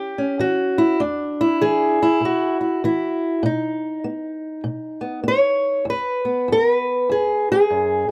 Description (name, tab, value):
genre	acoustic country blues, solo or duo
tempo	98 BPM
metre	4/4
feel	swing 64% on 8ths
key	E major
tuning	A4 = 441 Hz
part	fingerpicked old ladder-braced acoustic guitar	solo	0.0-8.1 s	E2 to C#5	-20 LUFS	equal	none
room	little or no reverb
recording	dry, close 1970s-style studio recording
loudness	-20 LUFS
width	mono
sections	0.0-5.9 A section; 5.9-8.1 A section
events	none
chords	0.0 A7 (rootless); 1.0 E7; 3.4 N.C.; 5.9 E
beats	0.38 | 0.99 1.60 2.21 2.81 | 3.42 4.03 4.64 5.25 | 5.86 6.47 7.08 7.69